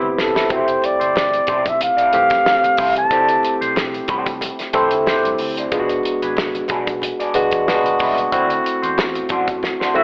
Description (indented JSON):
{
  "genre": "lush 1970s-style soul",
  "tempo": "92 BPM",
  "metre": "4/4",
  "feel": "swing 54% on 16ths",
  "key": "unclear",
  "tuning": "A4 = 440 Hz",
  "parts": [
    { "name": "barky tine electric piano", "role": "accompaniment", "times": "0.0-10.0 s", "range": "E3 to A4", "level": "-22 LUFS", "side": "equal", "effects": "overdrive, phaser" },
    { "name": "electric guitar through a small old amp", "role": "riff", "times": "0.0-10.0 s", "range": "G3 to D5", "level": "-27 LUFS", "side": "equal", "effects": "wah" },
    { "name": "vintage muted fingered electric bass", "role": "bass", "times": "0.0-10.0 s", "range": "E1 to D3", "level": "-42 LUFS", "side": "equal", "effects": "none" },
    { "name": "congas", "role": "percussion", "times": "0.0-10.0 s", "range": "none", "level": "-34 LUFS", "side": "equal", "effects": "none" },
    { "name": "breathy flugelhorn", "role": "melody", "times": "0.2-3.6, 10.0 s", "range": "A4 to A5", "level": "-18 LUFS", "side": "equal", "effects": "none" },
    { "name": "warm soul drum kit", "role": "drums", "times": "0.2-9.9 s", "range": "hi-hat, kick drum, snare drum", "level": "-26 LUFS", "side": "equal", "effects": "none" }
  ],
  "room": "moderate spring reverb, RT60 1.5 s, small room ambience",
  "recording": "telephone sound",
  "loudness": "-18 LUFS",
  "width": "mono",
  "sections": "0.0-10.0 A section",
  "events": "drum fill 0.0-0.5, 9.6-10.0",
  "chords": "0.0 Am9; 0.5 Fmaj9; 3.1 D7sus4; 5.7 E7; 8.3 D7",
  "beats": "| 0.51 1.16 1.81 2.46 | 3.11 3.76 4.42 5.07 | 5.72 6.37 7.02 7.67 | 8.33 8.98 9.63"
}